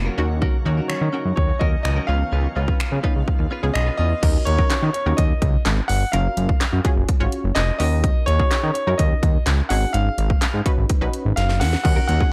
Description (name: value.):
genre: dance-pop.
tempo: 126 BPM.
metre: 4/4.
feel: straight.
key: Eb minor.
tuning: A4 = 439 Hz.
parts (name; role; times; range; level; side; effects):
analog pluck; accompaniment; 0.0-12.3 s; Bb3 to Db5; -32 LUFS; equal; chorus, sidechain pumping.
shimmering ambient pad; sustained chords; 0.0-4.2 s; Db3 to F4; -38 LUFS; equal; chorus, built-in reverb, sidechain pumping.
fat analog bass; bass; 0.0-12.2 s; F1 to Eb3; -23 LUFS; equal; sidechain pumping.
direct-recorded clean electric guitar; riff; 0.1-4.1, 11.8-12.2 s; Db4 to Cb5; -35 LUFS; equal; subtle chorus.
house drum kit; drums; 0.4-12.3 s; crash cymbal, finger snaps, handclaps, hi-hat, kick drum, snare drum; -23 LUFS; equal; overdrive.
warm concert grand piano; melody; 0.9-12.3 s; Db5 to Gb5; -28 LUFS; equal; slapback echo.
room: digital ambience.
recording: none.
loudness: -20 LUFS.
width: mono.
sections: 0.0-4.2 A section; 4.2-12.3 B section.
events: drum fill 11.4-11.8.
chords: 0.2 Ebm7; 2.1 Db7; 4.2 Ebm7; 6.1 Gbmaj7; 7.8 Ebm7; 9.7 Ab7sus4.